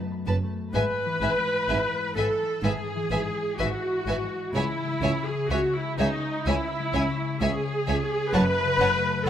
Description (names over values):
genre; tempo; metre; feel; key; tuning
classical, slow romantic movement for symphony orchestra; 63 BPM; 4/4; rubato; E major; A4 = 439 Hz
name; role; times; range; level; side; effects
concert harp; arpeggios; 0.0-9.3 s; F#2 to C#5; -33 LUFS; left 6 dB; none
rich symphonic violin section; melody; 0.3-8.9 s; G#5 to A5; -38 LUFS; equal; none
rich symphonic violin section; second line; 0.3-9.3 s; B4 to F#5; -32 LUFS; left 2 dB; none
rich symphonic cello section; bass; 0.3-9.3 s; C#2 to G#2; -30 LUFS; right 2 dB; none
rich symphonic double bass section; bass; 0.3-9.3 s; F#1 to C#2; -32 LUFS; right 2 dB; none
clear studio viola section; accompaniment; 0.7-9.3 s; D#4 to B4; -26 LUFS; equal; none
room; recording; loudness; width
moderate scoring stage reverb, RT60 1.9 s; close, detailed microphones; -23 LUFS; side -10 dB against mid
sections
0.0-9.3 A section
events
none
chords
0.0 B7(no3)/F#; 0.7 E/G#; 4.5 C#m; 8.3 F#m